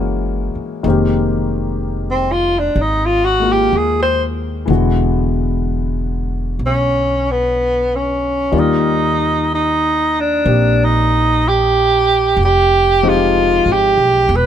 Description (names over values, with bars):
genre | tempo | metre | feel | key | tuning
jazz ballad | 62 BPM | 4/4 | swing 69% on 8ths | unclear | A4 = 440 Hz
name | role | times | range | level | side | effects
warm upright piano | accompaniment | 0.0-14.3 s | D3 to D5 | -20 LUFS | left 4 dB | none
upright bass | bass | 0.0-14.5 s | E1 to Eb2 | -20 LUFS | equal | none
warm tenor saxophone | melody | 2.1-14.5 s | B3 to C5 | -14 LUFS | right 1 dB | none
room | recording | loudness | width
little or no reverb | none | -13 LUFS | side -9 dB against mid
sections
0.0-14.5 A section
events
tenor saxophone solo 0.0-14.5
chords
0.0 Gb9; 0.8 Fm11; 4.7 E9; 8.5 Ebmaj7; 12.4 Fm9